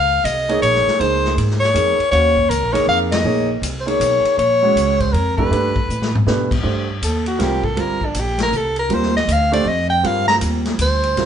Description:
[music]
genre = modal jazz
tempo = 159 BPM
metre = 3/4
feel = swing 64% on 8ths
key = C dorian from 6.6 s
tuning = A4 = 442 Hz
[part]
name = breathy soprano saxophone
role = melody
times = 0.0-11.3 s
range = D4 to Bb5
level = -17 LUFS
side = left 2 dB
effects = none
[part]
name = upright bass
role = bass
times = 0.0-11.3 s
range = Gb1 to B2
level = -21 LUFS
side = equal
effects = none
[part]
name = vintage drum kit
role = drums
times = 0.2-11.3 s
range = crash cymbal, hi-hat, kick drum, ride cymbal, snare drum, toms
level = -25 LUFS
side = left 2 dB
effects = none
[part]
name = warm grand piano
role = accompaniment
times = 0.5-11.3 s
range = G3 to F5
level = -22 LUFS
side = right 4 dB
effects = none
[sound]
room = moderate large studio reverb, RT60 1.0 s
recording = band playing live in one room, nothing above 10.5 kHz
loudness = -15 LUFS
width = side -8 dB against mid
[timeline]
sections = 0.0-6.6 A section; 6.6-11.3 B section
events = band accent 3.1; drum fill 5.9-6.3; soprano saxophone solo 6.6-11.3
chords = 0.0 Bbm9; 2.1 Ebm9; 5.5 G; 6.6 Cm9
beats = 0.24 0.62 | 0.99 1.37 1.75 | 2.12 2.50 2.87 | 3.25 3.63 4.00 | 4.38 4.76 5.13 | 5.51 5.89 6.26 | 6.64 7.02 7.39 | 7.77 8.15 8.53 | 8.90 9.28 9.66 | 10.04 10.41 10.79 | 11.17

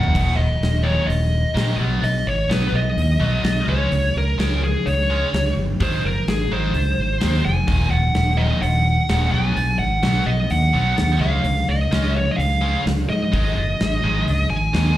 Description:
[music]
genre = hard rock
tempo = 128 BPM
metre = 4/4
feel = straight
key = Eb minor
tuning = A4 = 442 Hz
[part]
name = high-gain lead guitar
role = melody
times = 0.0-15.0 s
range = Ab4 to Ab5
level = -23 LUFS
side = equal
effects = distortion, slapback echo
[part]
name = heavy high-gain guitar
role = riff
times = 0.0-14.9 s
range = Eb2 to Db4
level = -27 LUFS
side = equal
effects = distortion, slapback echo
[part]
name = overdriven fingered electric bass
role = bass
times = 0.0-14.9 s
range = Eb1 to Ab2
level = -20 LUFS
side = equal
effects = none
[part]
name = huge arena drum kit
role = drums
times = 0.0-14.9 s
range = crash cymbal, hi-hat, kick drum, snare drum, toms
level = -24 LUFS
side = left 1 dB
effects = none
[sound]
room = studio ambience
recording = live gig heard through the venue's PA, club reverb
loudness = -17 LUFS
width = side -14 dB against mid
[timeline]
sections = 0.1-15.0 A section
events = none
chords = 0.1 Eb5; 1.8 B; 3.7 Db5; 5.8 Ab; 7.7 Ebm; 9.3 B; 11.2 Db; 13.3 Ab5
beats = | 0.15 0.62 1.09 1.56 | 2.03 2.50 2.97 3.44 | 3.92 4.39 4.86 5.33 | 5.80 6.27 6.74 7.21 | 7.68 8.15 8.62 9.09 | 9.56 10.04 10.51 10.98 | 11.45 11.92 12.39 12.86 | 13.33 13.80 14.27 14.74

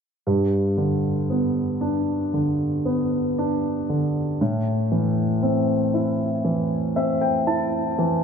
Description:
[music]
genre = pop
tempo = 58 BPM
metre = 4/4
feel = straight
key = G major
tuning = A4 = 443 Hz
[part]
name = warm grand piano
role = accompaniment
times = 0.3-8.2 s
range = G2 to A5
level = -20 LUFS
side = equal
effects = wide subtle chorus
[sound]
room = wet plate reverb, RT60 3.3 s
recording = dreamy mix soaked in reverb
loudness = -20 LUFS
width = side -6 dB against mid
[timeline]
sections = 0.3-8.2 A section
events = grand piano fill 6.5-8.2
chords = 0.3 G; 4.4 Am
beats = | 0.26 1.30 2.34 3.38 | 4.41 5.43 6.46 7.48

